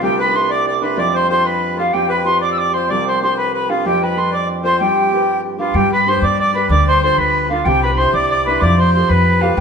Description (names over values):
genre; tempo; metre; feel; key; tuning
celtic folk, Celtic jig; 126 BPM (dotted quarters); 6/8; straight; unclear; A4 = 440 Hz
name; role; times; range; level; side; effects
mellow hollow mid whistle; melody; 0.0-9.6 s; F5 to E6; -17 LUFS; right 2 dB; none
accordion; second line; 0.0-9.6 s; F4 to D5; -20 LUFS; left 4 dB; none
Celtic harp; accompaniment; 0.0-9.6 s; C2 to C5; -20 LUFS; right 1 dB; none
upright bass; bass; 5.7-9.6 s; C2 to G2; -18 LUFS; equal; none
room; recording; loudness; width
wet stone room reverb, RT60 1.1 s; band playing live in one room; -13 LUFS; side -6 dB against mid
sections
0.0-5.8 A section; 5.8-9.6 A section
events
none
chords
0.0 Cadd9; 1.0 Fadd9; 2.9 Csus2; 3.8 F; 4.8 G; 6.7 Dm; 7.7 Cadd9; 8.6 Fadd9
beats
| 0.01 0.49 | 0.97 1.45 | 1.93 2.41 | 2.89 3.37 | 3.84 4.32 | 4.80 5.28 | 5.75 6.23 | 6.71 7.19 | 7.66 8.14 | 8.62 9.10 | 9.57